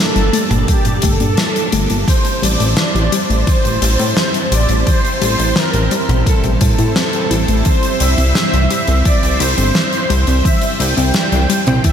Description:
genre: synthwave.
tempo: 86 BPM.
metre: 4/4.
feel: straight.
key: unclear.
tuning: A4 = 441 Hz.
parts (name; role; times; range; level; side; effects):
soft supersaw; melody; 0.0-11.9 s; G4 to G5; -20 LUFS; right 2 dB; tape echo.
string machine, full ensemble; sustained chords; 0.0-11.9 s; G3 to A5; -21 LUFS; equal; ensemble chorus, sidechain pumping.
warbly dusty pluck; arpeggios; 0.0-11.9 s; E3 to E4; -23 LUFS; left 3 dB; chorus, cassette tape, digital delay.
chorused synth bass; bass; 0.2-11.8 s; G1 to A2; -16 LUFS; equal; sidechain pumping.
huge arena drum kit; drums; 0.2-11.9 s; hi-hat, snare drum, toms; -18 LUFS; equal; gated reverb.
electronic kick drum; drums; 0.7-11.9 s; none; -15 LUFS; equal; none.
room: light reverb, studio ambience.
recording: none.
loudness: -12 LUFS.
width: side -8 dB against mid.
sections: 0.0-11.9 A section.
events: none.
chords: 0.0 Gmadd9; 2.1 Am7; 7.7 C.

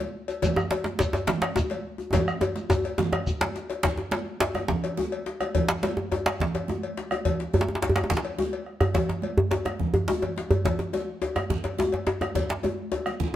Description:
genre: west african traditional, West African drum ensemble.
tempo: 141 BPM (dotted quarters).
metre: 12/8.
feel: straight.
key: none.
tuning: none.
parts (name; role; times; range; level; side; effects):
congas; percussion; 0.0-13.3 s; none; -32 LUFS; right 3 dB; none.
cowbell; percussion; 0.0-13.2 s; none; -33 LUFS; left 6 dB; none.
djembe; percussion; 0.0-13.2 s; none; -31 LUFS; left 4 dB; none.
shekere; percussion; 0.3-3.6 s; none; -36 LUFS; right 2 dB; none.
bombo; percussion; 0.4-13.3 s; none; -31 LUFS; equal; none.
djembe; percussion; 0.6-12.8 s; none; -26 LUFS; right 1 dB; none.
room: moderate stone room reverb, RT60 1.1 s.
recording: band playing live in one room.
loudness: -24 LUFS.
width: side -12 dB against mid.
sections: 0.0-3.8 A section; 3.8-13.4 B section.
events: drum fill 2.1-3.8, 10.2-10.7.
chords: none.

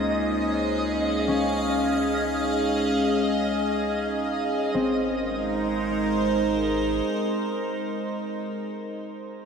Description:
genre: ambient.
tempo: free time.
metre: none.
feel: none.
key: Ab major.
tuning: A4 = 441 Hz.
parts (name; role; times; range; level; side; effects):
evolving wavetable pad; sustained chords; 0.0-8.6 s; Ab3 to F5; -25 LUFS; right 1 dB; phaser, built-in reverb.
warm sub bass; bass; 0.0-7.0 s; Ab1 to Db2; -39 LUFS; equal; none.
analog drone; drone; 0.0-8.5 s; Ab3 to Eb4; -30 LUFS; equal; chorus.
twinkling granular texture; texture; 0.0-4.8 s; Eb5; -34 LUFS; equal; built-in reverb.
concert harp; arpeggios; 1.3-8.5 s; C4 to Db4; -32 LUFS; left 2 dB; ping-pong delay.
room: wet huge ambient reverb, RT60 7.7 s.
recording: none.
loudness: -23 LUFS.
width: side -6 dB against mid.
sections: 0.0-4.7 A section; 4.7-7.8 B section.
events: fade-out on sub bass 0.0-4.7.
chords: 0.0 Db69; 4.7 Abadd9.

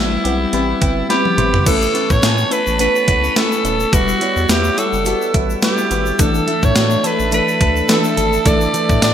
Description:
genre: 1980s-style pop.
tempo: 106 BPM.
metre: 4/4.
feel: swing 55% on 16ths.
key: unclear.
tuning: A4 = 443 Hz.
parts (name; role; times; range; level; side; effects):
raspy alto saxophone; melody; 0.0-9.1 s; E4 to D5; -18 LUFS; right 1 dB; none.
mellow FM electric piano; accompaniment; 0.0-9.1 s; E3 to C6; -20 LUFS; left 2 dB; chorus, phaser.
direct-recorded clean electric guitar; riff; 0.0-9.1 s; E3 to A4; -26 LUFS; right 5 dB; analog chorus.
round analog bass; bass; 0.0-9.1 s; Eb1 to A2; -21 LUFS; equal; none.
clean 12-bit digital drum machine; drums; 0.2-9.1 s; crash cymbal, hi-hat, kick drum, snare drum, tambourine, toms; -18 LUFS; equal; gated reverb.
warm analog pad; sustained chords; 1.7-9.1 s; G3 to E6; -26 LUFS; equal; chorus.
tube shaker; percussion; 1.7-9.1 s; none; -32 LUFS; left 8 dB; none.
room: moderate plate reverb, RT60 2.3 s.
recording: bright 1980s-style digital production.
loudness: -13 LUFS.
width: side -9 dB against mid.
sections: 0.0-1.7 A section; 1.7-9.1 B section.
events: FM electric piano fill 0.0-1.7; drum fill 1.1-1.7.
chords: 0.0 Cmaj7; 1.7 Aadd9; 3.9 Emadd9; 6.2 Asus4.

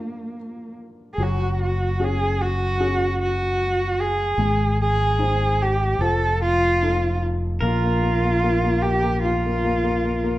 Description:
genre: acoustic folk-pop ballad.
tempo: 75 BPM.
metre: 4/4.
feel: straight.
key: unclear.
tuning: A4 = 440 Hz.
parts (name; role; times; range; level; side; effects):
dark cello; melody; 0.0-10.4 s; Bb3 to A4; -22 LUFS; right 1 dB; none.
warm upright piano; accompaniment; 0.0-10.4 s; D3 to C5; -28 LUFS; left 3 dB; none.
fingered electric bass; bass; 1.2-10.4 s; F1 to Bb1; -23 LUFS; equal; none.
pedal steel guitar; second line; 7.6-10.4 s; Bb4; -32 LUFS; right 5 dB; none.
room: moderate recital hall reverb, RT60 1.4 s.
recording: dark, warm production.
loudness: -19 LUFS.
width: side -16 dB against mid.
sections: 0.0-7.6 A section; 7.6-10.4 B section.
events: none.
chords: 0.0 Bb/D; 1.2 Gbsus2; 4.4 Ab; 6.0 F7; 7.6 Bb5.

